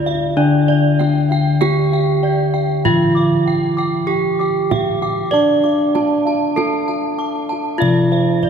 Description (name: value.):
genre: Javanese gamelan.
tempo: 48 BPM.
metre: 4/4.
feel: straight.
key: D slendro.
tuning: A4 = 440 Hz.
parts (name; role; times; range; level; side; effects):
gamelan-type bronze metallophone; melody; 0.0-8.5 s; D4 to D5; -19 LUFS; right 2 dB; none.
gamelan-type bronze metallophone; accompaniment; 0.0-8.5 s; D3 to D4; -18 LUFS; left 2 dB; none.
gamelan-type bossed gongs; arpeggios; 0.0-8.5 s; C5-25c to D6; -26 LUFS; left 3 dB; none.
gamelan-type bronze metallophone; arpeggios; 0.0-8.5 s; D5 to D6; -24 LUFS; right 4 dB; none.
gamelan-type bossed gongs; bass; 0.0-8.5 s; D2 to D5; -23 LUFS; right 1 dB; none.
kendang; percussion; 0.1-8.5 s; none; -28 LUFS; right 4 dB; none.
room: wet cathedral reverb, RT60 4.5 s.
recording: recorded in a church or concert hall.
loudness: -14 LUFS.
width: side -7 dB against mid.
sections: 0.0-8.5 A section.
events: none.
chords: none.